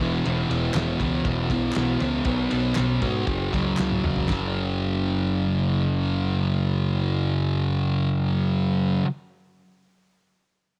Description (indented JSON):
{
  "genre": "garage rock duo or trio",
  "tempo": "118 BPM",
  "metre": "4/4",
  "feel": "straight",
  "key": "unclear",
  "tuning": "A4 = 442 Hz",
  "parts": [
    { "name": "thick fuzz guitar", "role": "riff", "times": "0.0-9.1 s", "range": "E2 to B3", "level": "-25 LUFS", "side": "equal", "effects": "distortion, cassette tape" },
    { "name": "growling fingered electric bass", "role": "bass", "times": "0.0-9.0 s", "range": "E1 to G#2", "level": "-32 LUFS", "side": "equal", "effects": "overdrive" },
    { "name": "cloth-damped thuddy drum kit", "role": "drums", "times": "0.0-4.4 s", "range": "kick drum, ride cymbal, snare drum, toms", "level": "-32 LUFS", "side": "equal", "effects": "cassette tape" },
    { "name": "group handclap", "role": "percussion", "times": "0.7-4.5 s", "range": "none", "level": "-37 LUFS", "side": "equal", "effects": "none" }
  ],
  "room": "little or no reverb",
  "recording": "home recording on cassette",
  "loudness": "-24 LUFS",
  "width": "mono",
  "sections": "0.0-4.3 A section; 4.3-8.4 B section",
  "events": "drum fill 3.8-4.3",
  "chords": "0.0 E5; 2.3 B5; 3.3 F#5",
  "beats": "| 0.24 0.75 1.25 1.76 | 2.27 2.77 3.28 3.79 | 4.30 4.80 5.31 5.82 | 6.33 6.84 7.35 7.86"
}